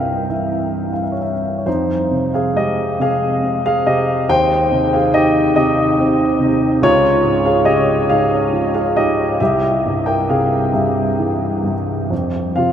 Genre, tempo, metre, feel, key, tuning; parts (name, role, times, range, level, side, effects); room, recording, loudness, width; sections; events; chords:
classical, lyrical solo piano; 43-48 BPM (dotted quarters); 6/8; rubato; F minor; A4 = 440 Hz
dark baby grand piano; solo; 0.0-12.7 s; C2 to G5; -14 LUFS; equal
wet huge ambient reverb, RT60 7.7 s; in a vast, echoing space; -14 LUFS; side -9 dB against mid
0.0-1.7 A section; 1.7-12.1 A section
0.0 C7; 1.7 Fm7; 4.3 Abmaj7/Eb; 6.8 Db; 9.4 C7; 12.1 F5